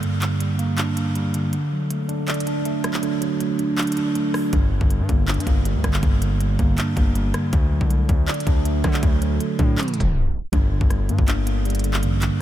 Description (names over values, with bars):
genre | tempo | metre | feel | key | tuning
hip hop, trap | 160 BPM | 4/4 | half-time | G harmonic minor | A4 = 440 Hz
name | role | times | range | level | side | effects
mellow tine electric piano | accompaniment | 0.0-12.4 s | G2 to D5 | -22 LUFS | right 2 dB | phaser
trap drum kit | drums | 0.0-12.3 s | handclaps, hi-hat, kick drum, rim click | -23 LUFS | equal | none
distorted 808-style bass | bass | 4.5-12.3 s | G1 to D3 | -23 LUFS | left 1 dB | distortion
room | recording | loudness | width
light reverb, digital ambience | tape stop | -19 LUFS | side -12 dB against mid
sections
0.0-10.5 A section; 10.5-12.4 B section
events
break 0.0-4.5; tape stop 9.8-10.5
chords
0.0 Gm; 1.5 D; 4.5 Gm; 7.5 D; 10.5 Gm